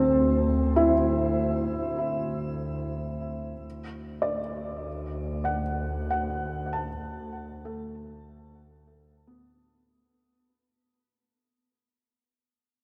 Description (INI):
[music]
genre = ambient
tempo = 74 BPM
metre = 4/4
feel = straight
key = unclear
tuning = A4 = 444 Hz
[part]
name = felt-muted upright piano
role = arpeggios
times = 0.0-10.6 s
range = A3 to A5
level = -30 LUFS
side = equal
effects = delay, shimmer reverb
[part]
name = warm symphonic double bass section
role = bass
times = 0.0-10.1 s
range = D2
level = -33 LUFS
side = equal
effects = tube saturation
[sound]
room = wet cathedral reverb, RT60 5.9 s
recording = in a vast, echoing space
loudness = -28 LUFS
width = mono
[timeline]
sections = 0.0-10.1 A section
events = fade-out 1.5-10.1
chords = 0.0 D7(no3); 3.7 E5/D